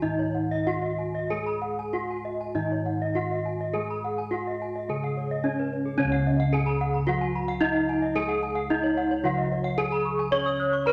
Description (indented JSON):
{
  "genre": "Balinese gamelan",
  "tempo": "94-111 BPM",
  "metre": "4/4",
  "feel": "straight",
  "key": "Db slendro",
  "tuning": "A4 = 440 Hz",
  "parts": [
    { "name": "gamelan-type bronze metallophone", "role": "melody", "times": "0.0-10.9 s", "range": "Db4 to Db5", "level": "-30 LUFS", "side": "equal", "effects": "none" },
    { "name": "gamelan-type bronze metallophone", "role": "accompaniment", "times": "0.0-10.9 s", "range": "Db3 to Db4", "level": "-36 LUFS", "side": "equal", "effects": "none" },
    { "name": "gamelan-type bronze metallophone", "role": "arpeggios", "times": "0.0-10.9 s", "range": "Db5 to Gb6-35c", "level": "-36 LUFS", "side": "equal", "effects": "none" },
    { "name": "gamelan-type bronze metallophone", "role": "arpeggios", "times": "0.0-10.9 s", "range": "Ab4+25c to Eb6+30c", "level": "-36 LUFS", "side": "equal", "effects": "none" },
    { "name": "gamelan-type bossed gongs", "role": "bass", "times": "0.0-10.9 s", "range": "Db2 to Db5", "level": "-35 LUFS", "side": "equal", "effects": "none" }
  ],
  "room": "wet large studio reverb, RT60 1.2 s",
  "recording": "none",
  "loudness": "-27 LUFS",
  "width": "mono",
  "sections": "0.0-6.0 A section; 6.0-10.9 B section",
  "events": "none",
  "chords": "none"
}